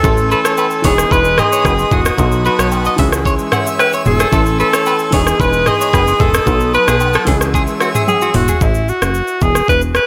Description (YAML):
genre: afrobeats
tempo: 112 BPM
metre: 4/4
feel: straight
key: unclear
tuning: A4 = 437 Hz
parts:
  - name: clear alto saxophone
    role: melody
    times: 0.0-10.1 s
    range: E4 to B4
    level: -18 LUFS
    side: equal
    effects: none
  - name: warm baby grand piano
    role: accompaniment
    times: 0.0-8.6 s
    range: E3 to A4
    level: -24 LUFS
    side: equal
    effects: none
  - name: airy breathy pad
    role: sustained chords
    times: 0.0-8.6 s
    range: B4 to E6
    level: -26 LUFS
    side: equal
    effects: chorus
  - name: electric guitar at the edge of break-up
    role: riff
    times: 0.0-8.6 s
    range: F#4 to F#5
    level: -23 LUFS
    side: equal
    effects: none
  - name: plucky analog bass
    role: bass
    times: 0.0-10.0 s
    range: E1 to C#2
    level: -20 LUFS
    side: equal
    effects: none
  - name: afro-pop drum kit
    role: drums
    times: 0.0-10.1 s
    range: hi-hat, kick drum, rim click, shaker, toms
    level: -19 LUFS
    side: equal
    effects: none
  - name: agogo bells and woodblock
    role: percussion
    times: 0.0-8.3 s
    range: none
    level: -27 LUFS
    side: equal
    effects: none
room: light reverb, digital ambience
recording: none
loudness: -14 LUFS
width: mono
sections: 0.0-8.6 A section; 8.6-10.1 B section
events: drum fill 8.1-8.6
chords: 0.0 Amaj7; 0.8 Emaj7; 2.2 B7; 3.0 C#m; 4.3 Amaj7; 5.1 Emaj7; 6.5 B7; 7.3 C#m; 8.6 F#m7; 9.4 E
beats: | 0.04 0.58 1.11 1.65 | 2.18 2.72 3.25 3.79 | 4.33 4.86 5.40 5.93 | 6.47 7.00 7.54 8.08 | 8.61 9.15 9.68